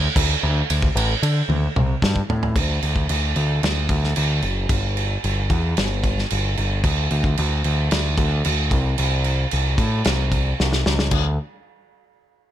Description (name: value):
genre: quiet-loud alternative rock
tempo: 112 BPM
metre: 4/4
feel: straight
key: D mixolydian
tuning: A4 = 442 Hz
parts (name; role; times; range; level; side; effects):
- growling picked electric bass; bass; 0.0-11.4 s; F#1 to D3; -21 LUFS; equal; overdrive
- loose indie drum kit; drums; 0.2-11.2 s; crash cymbal, kick drum, ride cymbal, snare drum, toms; -22 LUFS; right 1 dB; none
room: little or no reverb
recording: none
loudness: -18 LUFS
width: side -11 dB against mid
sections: 0.0-2.6 A section; 2.6-11.1 B section; 11.1-12.5 C section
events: drum fill 1.5-2.6, 10.6-11.1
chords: none